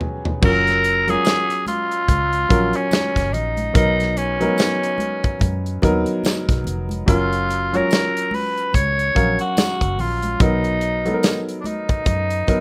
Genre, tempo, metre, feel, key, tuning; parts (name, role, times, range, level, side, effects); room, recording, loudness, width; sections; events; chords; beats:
lush 1970s-style soul; 72 BPM; 4/4; swing 58% on 16ths; F# major; A4 = 440 Hz
clear concert grand piano; accompaniment; 0.0-12.6 s; F#3 to E#5; -26 LUFS; equal
modern studio drum kit; drums; 0.0-12.6 s; crash cymbal, hi-hat, kick drum, snare drum, toms; -22 LUFS; equal
vintage muted fingered electric bass; bass; 0.4-12.5 s; E#1 to F#2; -27 LUFS; equal
congas; percussion; 0.4-12.6 s; -34 LUFS; equal
raspy tenor saxophone; melody; 0.5-12.6 s; C#4 to C#5; -23 LUFS; equal
tambourine; percussion; 1.2-11.5 s; -38 LUFS; equal
light reverb; rough home demo mix; -19 LUFS; mono
0.4-12.6 A section
break 0.0-0.4; drum fill 0.0-0.4
0.4 F#maj7; 3.8 Bmaj7; 7.1 F#maj7; 10.4 Bmaj7
| 0.43 1.26 2.09 2.92 | 3.75 4.58 5.41 6.24 | 7.07 7.90 8.73 9.56 | 10.40 11.23 12.06